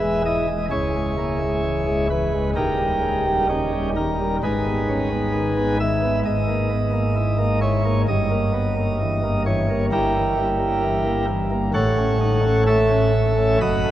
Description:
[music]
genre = classical, chorale-style piece for pipe organ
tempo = 65 BPM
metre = 4/4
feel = rubato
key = unclear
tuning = A4 = 440 Hz
[part]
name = chamber organ, principal chorus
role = solo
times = 0.0-13.9 s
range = C#1 to B5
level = -18 LUFS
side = equal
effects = none
[sound]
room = wet cathedral reverb, RT60 6.4 s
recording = worn, warbling old tape, cassette tape, warbly pitch drift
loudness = -18 LUFS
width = side -13 dB against mid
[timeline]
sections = 0.0-13.9 A section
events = none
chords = 0.0 E; 0.7 C#m; 2.6 D#7; 4.4 G#m; 6.3 G#madd9; 8.1 Gdim7; 11.7 A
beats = | 0.73 1.65 2.58 3.50 | 4.43 5.35 6.26 7.18 | 8.09 9.01 9.92 10.84 | 11.74 12.66 13.61

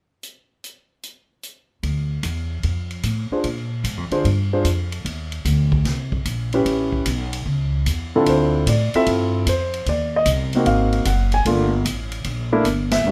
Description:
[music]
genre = jazz piano trio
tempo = 150 BPM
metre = 4/4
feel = swing 67% on 8ths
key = D minor from 8.3 s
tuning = A4 = 441 Hz
[part]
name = swinging big-band drum kit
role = drums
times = 0.2-13.0 s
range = hi-hat, kick drum, ride cymbal, snare drum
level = -31 LUFS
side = equal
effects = none
[part]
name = upright bass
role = bass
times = 1.8-13.1 s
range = E1 to Bb2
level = -24 LUFS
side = equal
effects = none
[part]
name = warm grand piano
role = melody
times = 3.3-13.1 s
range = D3 to G#5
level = -22 LUFS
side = equal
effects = none
[sound]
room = light reverb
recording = none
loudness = -21 LUFS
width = mono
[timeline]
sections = 0.2-1.8 A section; 1.8-8.3 B section; 8.3-13.1 C section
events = band accent 12.9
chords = 0.2 N.C.; 1.8 Dmadd9; 3.5 Bb5; 5.1 Ebmaj7(no3); 6.7 A7; 8.3 Dm7; 9.9 Cmadd9; 10.7 G#9; 11.5 Gm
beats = | 0.24 0.64 1.04 1.44 | 1.84 2.24 2.65 3.05 | 3.45 3.85 4.25 4.66 | 5.06 5.46 5.86 6.26 | 6.67 7.07 7.47 7.87 | 8.27 8.67 9.07 9.47 | 9.87 10.27 10.66 11.06 | 11.46 11.86 12.26 12.65 | 13.05

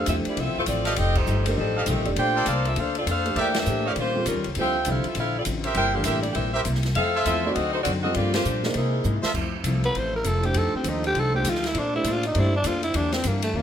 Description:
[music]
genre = jazz, big band swing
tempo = 201 BPM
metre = 4/4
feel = swing 63% on 8ths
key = F major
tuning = A4 = 438 Hz
[part]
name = clear saxophone section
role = melody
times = 0.0-9.2 s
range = Eb3 to G5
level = -25 LUFS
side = left 1 dB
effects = none
[part]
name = dark grand piano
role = accompaniment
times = 0.0-12.5 s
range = E3 to D5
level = -30 LUFS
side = right 3 dB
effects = none
[part]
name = upright bass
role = bass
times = 0.0-13.6 s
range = F1 to C3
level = -27 LUFS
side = equal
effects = none
[part]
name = hollow-body jazz guitar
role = accompaniment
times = 0.1-13.6 s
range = G2 to C5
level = -32 LUFS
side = left 6 dB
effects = none
[part]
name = open jazz drum kit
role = drums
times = 0.1-13.5 s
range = crash cymbal, hi-hat, kick drum, ride cymbal, snare drum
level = -32 LUFS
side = left 1 dB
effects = none
[part]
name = brilliant trumpet section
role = stabs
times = 0.9-9.3 s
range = F4 to F5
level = -28 LUFS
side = right 2 dB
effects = none
[part]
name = mellow saxophone section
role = sustained chords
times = 9.3-13.6 s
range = C3 to F4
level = -36 LUFS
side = equal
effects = none
[part]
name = growling alto saxophone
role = melody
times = 9.9-13.6 s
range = A3 to C5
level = -25 LUFS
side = equal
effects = none
[sound]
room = moderate large studio reverb, RT60 0.9 s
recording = none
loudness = -21 LUFS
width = side -9 dB against mid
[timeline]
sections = 0.0-9.3 A section; 9.3-13.6 B section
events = band accent 1.1, 3.5, 8.3; drum fill 9.0; alto saxophone solo 9.3-13.6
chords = 0.0 Fmaj7; 1.0 F9; 2.2 Bbmaj9; 3.4 Em7b5; 4.0 Eb9; 4.6 Dm9; 5.8 C7; 7.0 Fmaj7; 7.6 D7b9; 8.2 Gm7; 8.7 C7alt; 9.3 Fmaj7; 10.5 F9; 11.7 Bbmaj9; 12.9 Em7b5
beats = 0.07 0.37 0.67 | 0.97 1.27 1.57 1.87 | 2.17 2.47 2.77 3.07 | 3.37 3.66 3.96 4.26 | 4.56 4.86 5.16 5.46 | 5.76 6.06 6.36 6.66 | 6.95 7.25 7.55 7.85 | 8.15 8.45 8.75 9.05 | 9.35 9.65 9.95 10.25 | 10.55 10.85 11.15 11.45 | 11.74 12.04 12.34 12.64 | 12.94 13.24 13.54

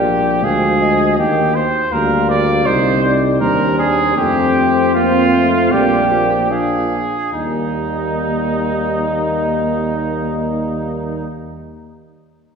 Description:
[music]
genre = classical, brass quintet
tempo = 72-82 BPM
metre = 4/4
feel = straight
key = Eb major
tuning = A4 = 440 Hz
[part]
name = dark trumpet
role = melody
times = 0.0-11.3 s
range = C5 to F5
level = -23 LUFS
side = left 6 dB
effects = none
[part]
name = clear trumpet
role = second line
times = 0.0-11.3 s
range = Eb4 to D5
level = -18 LUFS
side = right 3 dB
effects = none
[part]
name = warm French horn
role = accompaniment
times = 0.0-11.3 s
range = Ab3 to Eb4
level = -22 LUFS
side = left 4 dB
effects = none
[part]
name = warm euphonium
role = accompaniment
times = 0.0-11.3 s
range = Eb3 to Bb3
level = -23 LUFS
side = right 1 dB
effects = none
[part]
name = mellow tuba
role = bass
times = 0.0-11.3 s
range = Bb1 to F2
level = -20 LUFS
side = right 1 dB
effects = none
[sound]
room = wet concert hall reverb, RT60 2.2 s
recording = recorded in a church or concert hall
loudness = -14 LUFS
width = side -6 dB against mid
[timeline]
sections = 0.0-7.3 A section; 7.3-10.5 B section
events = slowing down 0.0-7.3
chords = 0.0 Bb7; 1.2 Eb; 2.7 Cm; 4.2 F; 5.7 Bb7; 7.3 Eb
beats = 0.43 | 1.17 1.92 2.65 3.40 | 4.17 4.94 5.72 6.51 | 7.33 8.13 8.93 9.73

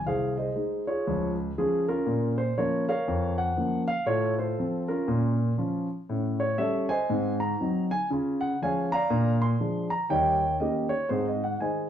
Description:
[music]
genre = jazz, stride piano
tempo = 119 BPM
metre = 4/4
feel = swing 60% on 8ths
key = unclear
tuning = A4 = 439 Hz
[part]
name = dark grand piano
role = solo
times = 0.0-11.9 s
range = C2 to C6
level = -25 LUFS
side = equal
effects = none
[sound]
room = wet studio reverb, RT60 0.7 s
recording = heard from further back in the room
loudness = -25 LUFS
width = side -10 dB against mid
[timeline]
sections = 0.0-11.9 A section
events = none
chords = 0.1 Ab/C; 1.1 Db; 2.1 Bbm; 4.1 F/A; 5.1 Bbm; 6.1 A7; 7.1 Ab7; 8.1 Db; 9.1 Bb7; 10.1 Eb7; 11.1 Ab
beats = | 0.06 0.56 1.06 1.57 | 2.07 2.57 3.08 3.58 | 4.08 4.58 5.09 5.59 | 6.09 6.60 7.10 7.60 | 8.10 8.61 9.11 9.61 | 10.12 10.62 11.12 11.62

